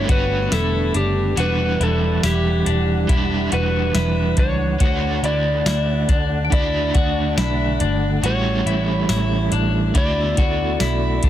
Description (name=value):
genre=dream pop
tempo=70 BPM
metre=4/4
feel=straight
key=D major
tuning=A4 = 440 Hz
part: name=electric slide guitar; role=melody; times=0.0-11.2 s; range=G4 to D5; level=-25 LUFS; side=left 1 dB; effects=ping-pong delay
part: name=overdriven semi-hollow guitar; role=accompaniment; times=0.0-11.3 s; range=A2 to B4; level=-25 LUFS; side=right 3 dB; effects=tremolo, lush chorus
part: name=mellow tonewheel organ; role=sustained chords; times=0.0-11.3 s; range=D3 to F#5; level=-26 LUFS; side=right 2 dB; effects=chorus vibrato, wide subtle chorus
part: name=clean electric guitar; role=arpeggios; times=0.0-11.3 s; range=D4 to F#4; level=-26 LUFS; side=left 3 dB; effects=lush chorus, ping-pong delay
part: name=vintage muted picked electric bass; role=bass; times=0.0-11.3 s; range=E1 to D2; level=-22 LUFS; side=equal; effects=none
part: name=soft vintage rhythm box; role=drums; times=0.1-11.3 s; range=hi-hat, kick drum, snare drum, tambourine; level=-20 LUFS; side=equal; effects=overdrive
part: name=vibraphone with hard mallets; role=texture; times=0.4-11.3 s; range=A3 to E4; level=-33 LUFS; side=left 7 dB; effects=none
room=little or no reverb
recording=dense, heavily limited modern master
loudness=-17 LUFS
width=side -12 dB against mid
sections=0.0-11.3 A section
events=none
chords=0.0 Gmaj9; 1.4 Em9; 4.8 D; 8.2 A7; 9.9 D